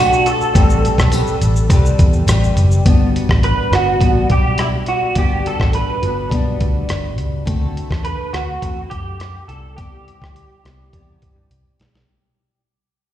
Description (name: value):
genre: indie pop, bedroom pop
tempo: 104 BPM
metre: 4/4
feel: straight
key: G major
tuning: A4 = 438 Hz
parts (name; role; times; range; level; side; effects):
- electric guitar through a small old amp; melody; 0.0-11.5 s; E4 to B4; -19 LUFS; right 2 dB; ensemble chorus, slapback echo, tape echo
- flamenco guitar; accompaniment; 0.0-12.6 s; A2 to B4; -22 LUFS; left 3 dB; analog chorus, vibrato effect, slapback echo
- vintage muted picked electric bass; bass; 0.0-12.1 s; F#1 to G2; -18 LUFS; equal; none
- dusty soul sampler-style drum kit; drums; 0.1-12.1 s; hi-hat, kick drum, rim click, shaker, snare drum; -17 LUFS; equal; none
- tambourine; percussion; 1.1-2.4 s; none; -31 LUFS; left 3 dB; slapback echo
room: digital ambience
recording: live gig heard through the venue's PA, recital hall reverb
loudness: -13 LUFS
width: side -12 dB against mid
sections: 0.0-2.9 A section; 2.9-12.1 B section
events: fade-out 2.9-12.1; drum fill 11.5-12.1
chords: 0.0 Gmaj9 (rootless); 0.6 Am9; 2.9 Gmaj7; 7.5 D7; 9.5 Cmaj7